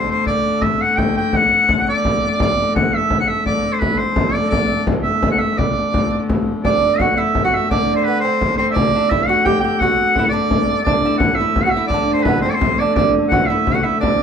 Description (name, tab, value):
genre	medieval dance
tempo	114 BPM (dotted quarters)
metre	6/8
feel	straight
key	D mixolydian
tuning	A4 = 439 Hz
part	bright shawm	melody	0.0-14.2 s	B4 to G5	-18 LUFS	equal	none
part	warm hurdy-gurdy	drone	0.0-14.2 s	D3 to A3	-22 LUFS	left 3 dB	none
part	frame drum	percussion	0.1-14.2 s	none	-20 LUFS	left 1 dB	none
part	lute	second line	6.6-14.2 s	B3 to G4	-20 LUFS	right 4 dB	none
room	moderate studio reverb, RT60 0.6 s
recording	band playing live in one room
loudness	-14 LUFS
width	side -7 dB against mid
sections	0.0-6.6 A section; 6.6-14.2 A section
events	none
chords	none